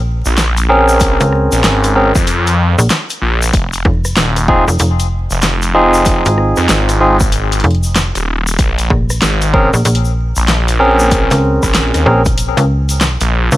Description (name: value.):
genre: glitch hop.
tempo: 95 BPM.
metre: 4/4.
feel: swing 63% on 16ths.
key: unclear.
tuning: A4 = 437 Hz.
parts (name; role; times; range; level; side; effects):
slap-like FM bass; bass; 0.0-13.6 s; F1 to Db2; -13 LUFS; equal; none.
phased detuned saw bass; bass; 0.3-13.5 s; Eb1 to F2; -14 LUFS; equal; phaser.
tube shaker; percussion; 0.3-13.6 s; none; -25 LUFS; left 2 dB; none.
pop drum kit; drums; 0.4-13.6 s; hi-hat, rim click, snare drum; -17 LUFS; equal; small room ambience.
barky tine electric piano; stabs; 0.7-12.2 s; C4 to Bb4; -14 LUFS; equal; sidechain pumping, ping-pong delay.
electronic kick drum; drums; 1.0-12.4 s; none; -15 LUFS; equal; small room ambience.
room: little or no reverb.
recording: vinyl crackle.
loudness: -10 LUFS.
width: side -15 dB against mid.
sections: 0.0-13.6 A section.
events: none.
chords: 0.0 Bbm9; 3.5 Fm7; 8.6 Bbm9.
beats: 0.38 | 1.01 1.64 2.27 2.90 | 3.53 4.17 4.80 5.43 | 6.06 6.69 7.32 7.96 | 8.59 9.22 9.85 10.48 | 11.11 11.74 12.38 13.01.